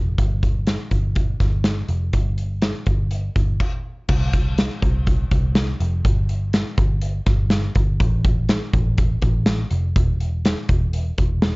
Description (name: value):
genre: jangly indie pop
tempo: 123 BPM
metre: 4/4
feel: straight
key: unclear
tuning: A4 = 439 Hz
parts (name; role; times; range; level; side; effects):
- vintage muted picked electric bass; bass; 0.0-11.6 s; E1 to C2; -21 LUFS; equal; none
- big rock drum kit; drums; 0.2-11.5 s; crash cymbal, hi-hat, kick drum, snare drum; -20 LUFS; equal; none
room: little or no reverb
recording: worn, warbling old tape, cassette tape, warbly pitch drift, nothing above 7.7 kHz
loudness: -18 LUFS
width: side -27 dB against mid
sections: 0.0-4.1 A section; 4.1-11.6 B section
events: stop 3.6-4.1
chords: none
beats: | 0.18 0.67 1.16 1.65 | 2.13 2.62 3.11 3.60 | 4.09 4.58 5.07 5.56 | 6.04 6.53 7.02 7.51 | 8.00 8.49 8.98 9.47 | 9.96 10.44 10.93 11.42